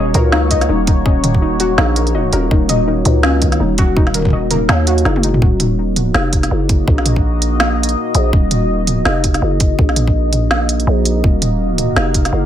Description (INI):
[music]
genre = half-time drum and bass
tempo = 165 BPM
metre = 4/4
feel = swing 58% on 16ths, half-time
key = Eb minor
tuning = A4 = 440 Hz
[part]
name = deep dark ambient pad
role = sustained chords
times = 0.0-12.5 s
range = Bb3 to F5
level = -20 LUFS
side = equal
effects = chorus, built-in reverb, sidechain pumping
[part]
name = warbly dusty pluck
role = arpeggios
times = 0.0-5.4 s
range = Eb3 to Eb5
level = -19 LUFS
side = left 2 dB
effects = chorus, analog delay
[part]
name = growling 808-style bass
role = bass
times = 0.0-12.5 s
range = Eb1 to Eb2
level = -16 LUFS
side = equal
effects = none
[part]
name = organic electronic drum kit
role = drums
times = 0.1-12.3 s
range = hi-hat, snare drum, toms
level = -18 LUFS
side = right 1 dB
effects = none
[part]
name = electronic kick drum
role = drums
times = 0.5-12.2 s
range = none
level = -14 LUFS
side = equal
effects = none
[sound]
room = light reverb, digital ambience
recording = none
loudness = -12 LUFS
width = side -11 dB against mid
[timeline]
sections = 0.0-5.4 A section; 5.4-12.5 A section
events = drop 0.0-5.4, 5.4-12.5; drum fill 5.1-5.4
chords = 0.0 Ebm